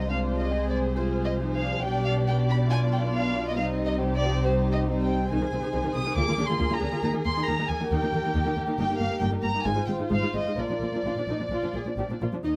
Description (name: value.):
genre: quick classical-period movement for string orchestra.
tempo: 137 BPM.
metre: 4/4.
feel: rubato.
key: C minor.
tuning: A4 = 435 Hz.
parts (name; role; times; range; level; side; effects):
dark chamber violin section; melody; 0.0-12.6 s; C5 to Eb6; -33 LUFS; equal; none.
dark studio violin section; second line; 0.0-12.5 s; Eb4 to Eb5; -34 LUFS; equal; none.
dark studio viola section; accompaniment; 0.0-12.5 s; Eb3 to F4; -33 LUFS; equal; none.
rich studio double bass section; bass; 0.0-12.6 s; G1 to Eb2; -32 LUFS; equal; none.
warm studio cello section; bass; 0.0-12.6 s; G2 to Eb3; -35 LUFS; equal; none.
room: little or no reverb.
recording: close, detailed microphones.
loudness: -26 LUFS.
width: mono.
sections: 0.0-12.4 A section.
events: none.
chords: 0.1 Dm7b5/C; 1.8 G/B; 3.6 Cm; 5.3 Ab/C; 6.2 Bb7/D; 7.0 Eb; 8.8 Eb/G; 9.7 Fm7/Ab; 10.6 Bb.